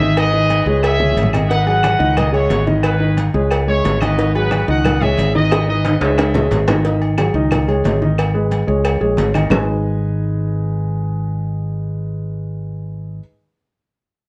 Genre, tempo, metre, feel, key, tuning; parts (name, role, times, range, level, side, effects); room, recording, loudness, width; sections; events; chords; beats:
latin, salsa; 180 BPM; 4/4; straight; G# minor; A4 = 440 Hz
bright trumpet section; melody; 0.0-6.6 s; D#4 to F#5; -23 LUFS; equal; tape echo
dark grand piano; accompaniment; 0.0-13.2 s; D#3 to G#5; -22 LUFS; equal
fingered electric bass; bass; 0.0-13.2 s; G#1 to C#2; -21 LUFS; equal
congas; percussion; 0.0-9.6 s; -26 LUFS; equal
agogo bells and timbales; percussion; 0.2-9.6 s; -27 LUFS; equal
claves; percussion; 0.2-9.6 s; -33 LUFS; equal
cowbell and bongos; percussion; 0.2-9.6 s; -27 LUFS; equal
moderate studio reverb, RT60 0.6 s; worn, warbling old tape, cassette tape, warbly pitch drift; -17 LUFS; mono
0.0-6.8 A section; 6.8-9.5 B section; 9.5-12.2 C section
drum fill 1.0-1.5, 5.5-6.8
0.2 G#m; 1.5 G#m7; 2.2 C#madd9; 4.2 G#m7; 4.8 G#m; 6.8 G#5; 7.5 C#sus2; 8.2 G#m; 8.8 C#sus2; 9.5 G#m
| 0.16 0.50 0.83 1.17 | 1.50 1.84 2.17 2.51 | 2.84 3.17 3.51 3.84 | 4.18 4.51 4.84 5.18 | 5.51 5.85 6.18 6.51 | 6.85 7.18 7.52 7.85 | 8.18 8.52 8.85 9.18 | 9.52 9.85 10.18 10.52 | 10.85 11.18 11.51 11.85